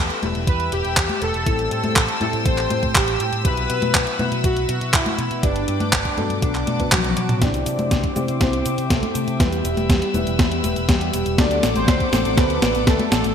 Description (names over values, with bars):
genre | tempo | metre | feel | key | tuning
italo disco | 121 BPM | 4/4 | straight | E minor | A4 = 441 Hz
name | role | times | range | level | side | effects
analog synth brass | melody | 0.0-13.3 s | F#3 to D5 | -24 LUFS | equal | chorus, digital delay, shimmer reverb
rich studio string section | sustained chords | 0.0-13.3 s | A4 to E6 | -28 LUFS | left 3 dB | low-pass filter, shimmer reverb
dark grand piano | stabs | 0.0-13.3 s | G2 to B4 | -30 LUFS | left 4 dB | analog chorus, low-pass filter, shimmer reverb
picked electric bass with an envelope filter | bass | 0.0-13.3 s | E1 to C3 | -26 LUFS | right 1 dB | none
clean 12-bit digital drum machine | drums | 0.1-13.3 s | cabasa, congas, handclaps, hi-hat, snare drum, toms | -22 LUFS | left 1 dB | overdrive, small room ambience, gated reverb
electronic kick drum | drums | 0.5-13.0 s | none | -20 LUFS | right 1 dB | overdrive, small room ambience
room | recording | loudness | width
moderate lush hall reverb, RT60 1.8 s | bright 1980s-style digital production | -17 LUFS | side -8 dB against mid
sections
0.0-7.4 A section; 7.4-13.3 B section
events
drum fill 6.9-7.4, 7.4-13.3; filter sweep on grand piano 7.4-13.3; filter sweep on string section 7.4-13.3; filter sweep on analog polysynth 7.4-13.3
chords
0.0 Em; 1.5 Am7; 3.4 Bsus4; 5.4 G; 6.4 Bm7; 7.4 Cadd9; 9.4 Em; 11.4 D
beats
0.47 0.97 | 1.47 1.96 2.46 2.95 | 3.45 3.94 4.44 4.94 | 5.43 5.93 6.42 6.92 | 7.42 7.91 8.41 8.90 | 9.40 9.89 10.39 10.89 | 11.38 11.88 12.37 12.87